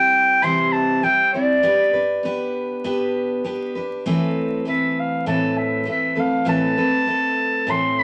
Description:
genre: acoustic folk duo or small band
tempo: 100 BPM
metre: 4/4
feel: straight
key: A minor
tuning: A4 = 442 Hz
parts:
  - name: warm clarinet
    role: melody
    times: 0.0-8.0 s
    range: D5 to C6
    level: -21 LUFS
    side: equal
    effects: none
  - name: picked steel-string acoustic guitar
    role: accompaniment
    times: 0.0-8.0 s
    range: A2 to C5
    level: -24 LUFS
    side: equal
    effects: none
room: moderate studio reverb, RT60 0.6 s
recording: vinyl crackle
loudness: -20 LUFS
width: mono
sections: 0.0-8.0 A section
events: none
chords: 0.0 C; 1.7 G/B; 4.1 Amadd9

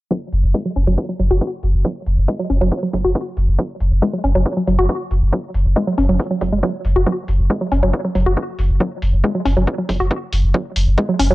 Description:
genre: driving peak-time techno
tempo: 138 BPM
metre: 4/4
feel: straight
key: unclear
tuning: A4 = 440 Hz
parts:
  - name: woody wave-folded pluck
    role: riff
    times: 0.1-11.3 s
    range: F#3 to F#4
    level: -20 LUFS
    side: equal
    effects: chorus, tube saturation, vintage 12-bit sampler grit, sidechain pumping, tape echo
  - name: electronic kick drum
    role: drums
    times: 0.1-11.1 s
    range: none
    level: -23 LUFS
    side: equal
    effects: high-pass filter on kick
  - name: warm sub bass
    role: bass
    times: 0.3-11.3 s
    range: F#1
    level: -16 LUFS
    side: equal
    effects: tube saturation, sidechain pumping, low-pass filter
  - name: electronic hi-hat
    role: drums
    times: 0.3-11.3 s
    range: none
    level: -30 LUFS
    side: equal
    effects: none
room: little or no reverb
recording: dry, gritty hardware recording, low-pass filter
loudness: -16 LUFS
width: side -19 dB against mid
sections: 0.1-11.3 A section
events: filter sweep on synth arpeggio sound 0.1-11.3; filter sweep 0.1-11.3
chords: 0.1 F#5

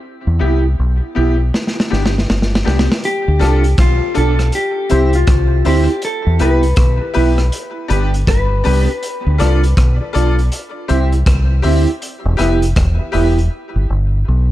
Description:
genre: dub reggae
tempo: 80 BPM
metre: 4/4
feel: swing 62% on 16ths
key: D dorian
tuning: A4 = 441 Hz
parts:
  - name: deep dub fingered electric bass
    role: bass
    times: 0.3-14.5 s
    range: E1 to E2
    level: -14 LUFS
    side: equal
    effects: none
  - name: mellow electric guitar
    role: accompaniment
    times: 0.4-13.4 s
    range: B3 to A4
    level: -21 LUFS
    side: right 5 dB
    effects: ensemble chorus, low-pass filter, tape echo
  - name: bright upright piano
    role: stabs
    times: 0.4-13.3 s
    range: B3 to E5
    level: -24 LUFS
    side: left 6 dB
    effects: low-pass filter, tape echo
  - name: crunchy breakbeat drum kit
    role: drums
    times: 1.5-13.5 s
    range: hi-hat, kick drum, rim click, snare drum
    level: -18 LUFS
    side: equal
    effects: none
  - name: mellow electric guitar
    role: melody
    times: 3.1-9.0 s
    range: F4 to B4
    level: -20 LUFS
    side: left 2 dB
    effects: low-pass filter, tape echo
room: small room ambience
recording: none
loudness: -12 LUFS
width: side -14 dB against mid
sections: 0.0-3.0 A section; 3.0-14.5 B section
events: break 0.0-3.0, 13.5-14.5; drum fill 1.5-3.0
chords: 0.0 Em; 1.5 G; 3.0 Dm; 4.5 C; 6.0 Em; 7.5 G; 9.0 Dm; 10.5 C; 12.0 Em; 13.5 G

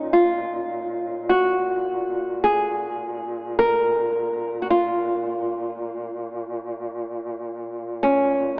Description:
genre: caucasian folk, Caucasian lament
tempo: 53 BPM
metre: 4/4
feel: rubato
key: Bb minor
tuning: A4 = 440 Hz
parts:
  - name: flamenco guitar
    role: melody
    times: 0.0-8.6 s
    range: Db4 to Bb4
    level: -20 LUFS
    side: equal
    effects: none
  - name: warm duduk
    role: drone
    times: 0.0-8.6 s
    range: Bb2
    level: -31 LUFS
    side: equal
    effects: none
room: wet cathedral reverb, RT60 6.1 s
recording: AM radio sound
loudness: -21 LUFS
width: side -33 dB against mid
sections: 0.0-8.6 A section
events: none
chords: none

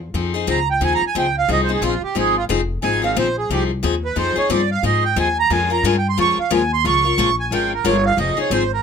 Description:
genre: acoustic string swing (jazz manouche)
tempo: 179 BPM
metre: 4/4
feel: swing 60% on 8ths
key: F minor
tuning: A4 = 440 Hz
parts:
  - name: upright bass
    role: bass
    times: 0.0-8.8 s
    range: F1 to Ab2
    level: -23 LUFS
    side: left 1 dB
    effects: none
  - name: picked steel-string acoustic guitar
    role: accompaniment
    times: 0.1-8.6 s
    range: F3 to Bb4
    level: -21 LUFS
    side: left 7 dB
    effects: none
  - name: accordion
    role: melody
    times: 0.5-8.8 s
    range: F4 to Db6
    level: -19 LUFS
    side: right 6 dB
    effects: none
room: light reverb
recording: none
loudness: -16 LUFS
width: side -6 dB against mid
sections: 0.1-8.8 A section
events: accordion solo 0.1-8.8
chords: 0.1 Fm7; 5.5 Bbm7; 8.2 Fm7

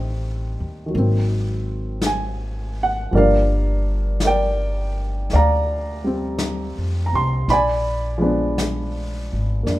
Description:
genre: jazz ballad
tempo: 55 BPM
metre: 4/4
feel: swing 69% on 8ths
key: unclear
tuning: A4 = 440 Hz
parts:
  - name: warm baby grand piano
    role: accompaniment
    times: 0.0-9.8 s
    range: Eb3 to C6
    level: -22 LUFS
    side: right 1 dB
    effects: none
  - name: upright bass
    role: bass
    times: 0.0-9.8 s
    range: G1 to F2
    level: -22 LUFS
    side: equal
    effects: none
  - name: jazz brush drum kit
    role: drums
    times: 0.9-9.8 s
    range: brushed snare drum, hi-hat, snare drum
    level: -29 LUFS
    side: left 2 dB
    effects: none
room: light reverb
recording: minimal, uncompressed stereo recording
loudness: -19 LUFS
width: side -16 dB against mid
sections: 0.0-9.8 A section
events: none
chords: 0.0 Am7b5; 0.9 Ab9; 3.1 Gm7; 7.5 Bb7b9

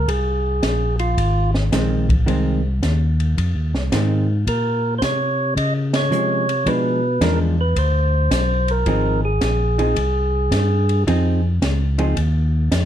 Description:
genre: soul jazz organ trio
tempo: 109 BPM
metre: 4/4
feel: swing 67% on 8ths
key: F minor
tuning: A4 = 440 Hz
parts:
  - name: percussive tonewheel organ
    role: melody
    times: 0.0-11.0 s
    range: F4 to Eb5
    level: -22 LUFS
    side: right 1 dB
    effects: overdrive, stopped rotary speaker
  - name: tonewheel organ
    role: bass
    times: 0.0-12.9 s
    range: Ab1 to Db3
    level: -19 LUFS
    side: equal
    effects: overdrive, chorus vibrato, slow rotary speaker
  - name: open jazz drum kit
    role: drums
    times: 0.1-12.9 s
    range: hi-hat, kick drum, ride cymbal, snare drum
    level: -25 LUFS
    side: equal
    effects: none
  - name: vintage hollow-body jazz guitar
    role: accompaniment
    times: 1.7-12.2 s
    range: Eb3 to Ab4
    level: -22 LUFS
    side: right 1 dB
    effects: none
room: light reverb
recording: dark, warm production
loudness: -17 LUFS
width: side -10 dB against mid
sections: 0.0-12.9 A section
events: band accent 5.8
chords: 0.0 Fm7; 4.5 Bbm7; 6.7 Bdim7; 8.9 Fm7

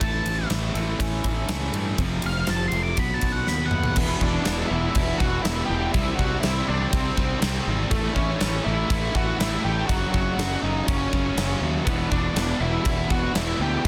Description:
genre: quiet-loud alternative rock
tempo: 122 BPM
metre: 4/4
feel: straight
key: E minor from 4.0 s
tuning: A4 = 440 Hz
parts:
  - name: octave-fuzz lead guitar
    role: melody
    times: 0.0-13.9 s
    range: A3 to D6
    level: -30 LUFS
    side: equal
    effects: distortion, slapback echo
  - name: electric guitar through a small old amp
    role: arpeggios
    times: 0.0-4.0 s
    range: F2 to F#4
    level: -37 LUFS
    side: equal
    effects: tremolo
  - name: fuzz guitar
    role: riff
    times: 0.0-13.9 s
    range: E2 to C4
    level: -33 LUFS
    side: equal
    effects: distortion
  - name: high-gain distorted guitar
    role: riff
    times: 0.0-13.9 s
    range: E2 to C4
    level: -35 LUFS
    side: equal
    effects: distortion
  - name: fuzz fingered electric bass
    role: bass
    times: 0.0-13.9 s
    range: E1 to G2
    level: -30 LUFS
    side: equal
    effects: overdrive
  - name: huge arena drum kit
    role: drums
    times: 0.0-13.9 s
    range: crash cymbal, kick drum, ride cymbal, snare drum, toms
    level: -29 LUFS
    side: equal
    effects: none
  - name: raw garage guitar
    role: riff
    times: 4.0-13.9 s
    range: E2 to C4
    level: -35 LUFS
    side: equal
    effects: overdrive
room: little or no reverb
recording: dense, heavily limited modern master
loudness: -24 LUFS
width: mono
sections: 0.0-4.0 A section; 4.0-13.9 B section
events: lead electric guitar solo 0.0-4.0; drum fill 3.5-4.0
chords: 0.0 A; 2.0 F; 3.0 B7; 4.0 E5; 5.9 C5; 7.9 A; 9.9 F#5; 11.9 E5

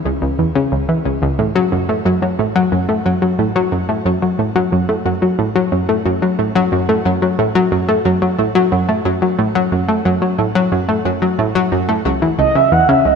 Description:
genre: ambient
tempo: 90 BPM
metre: 4/4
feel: straight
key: unclear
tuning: A4 = 440 Hz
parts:
  - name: analog pluck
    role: riff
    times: 0.1-13.2 s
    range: C#2 to A3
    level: -14 LUFS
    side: left 1 dB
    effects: chorus, shimmer reverb, tape echo
  - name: expressive portamento lead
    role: melody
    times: 12.4-13.2 s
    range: D#5 to F#5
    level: -11 LUFS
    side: right 3 dB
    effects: wide subtle chorus, shimmer reverb
room: wet plate reverb, RT60 3.5 s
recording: none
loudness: -14 LUFS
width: side -6 dB against mid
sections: 0.0-13.2 A section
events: none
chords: 0.0 C#m; 1.4 F#m; 12.1 C#m

